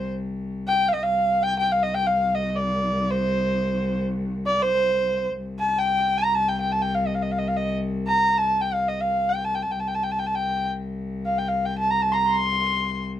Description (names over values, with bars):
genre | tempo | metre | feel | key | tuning
Turkish makam ensemble | free time | none | none | C makam huseyni | A4 = 440 Hz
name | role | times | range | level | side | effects
warm kamancheh | melody | 0.0-13.0 s | C5 to C6 | -22 LUFS | equal | none
warm cello | drone | 0.0-13.2 s | C2 | -28 LUFS | left 2 dB | none
room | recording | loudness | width
light reverb | none | -21 LUFS | side -11 dB against mid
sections
0.0-5.4 A section; 5.4-13.2 A section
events
none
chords
none